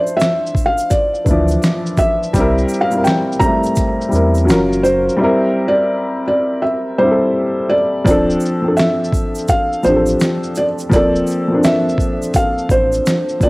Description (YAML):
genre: lo-fi hip hop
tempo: 84 BPM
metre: 4/4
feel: swing 62% on 16ths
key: unclear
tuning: A4 = 440 Hz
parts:
  - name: dark upright piano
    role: accompaniment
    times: 0.0-13.5 s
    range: E3 to D5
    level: -16 LUFS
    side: left 1 dB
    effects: cassette tape
  - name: egg shaker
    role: percussion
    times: 0.1-13.5 s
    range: none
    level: -34 LUFS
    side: right 4 dB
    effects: none
  - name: felt-muted upright piano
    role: melody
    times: 0.2-13.5 s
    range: C5 to Bb5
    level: -17 LUFS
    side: equal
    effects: cassette tape
  - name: dusty soul sampler-style drum kit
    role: drums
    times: 0.2-13.5 s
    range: hi-hat, kick drum, shaker, snare drum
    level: -18 LUFS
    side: equal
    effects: overdrive, cassette tape
  - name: sub bass with octave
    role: bass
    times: 1.3-13.0 s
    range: D1 to E2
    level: -19 LUFS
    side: equal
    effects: transformer saturation
room: studio reverb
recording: home recording on cassette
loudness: -13 LUFS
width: side -23 dB against mid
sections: 0.0-8.1 A section; 8.1-13.5 B section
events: drums muted 5.2-8.1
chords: 0.0 Dm9; 2.3 C7; 4.5 Gbmaj7; 5.2 C7; 8.1 Dm7; 10.9 Bbmaj9#11/D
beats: 0.20 0.91 1.63 | 2.34 3.06 3.77 4.48 | 5.20 5.91 6.63 7.34 | 8.06 8.77 9.48 10.20 | 10.91 11.63 12.34 13.06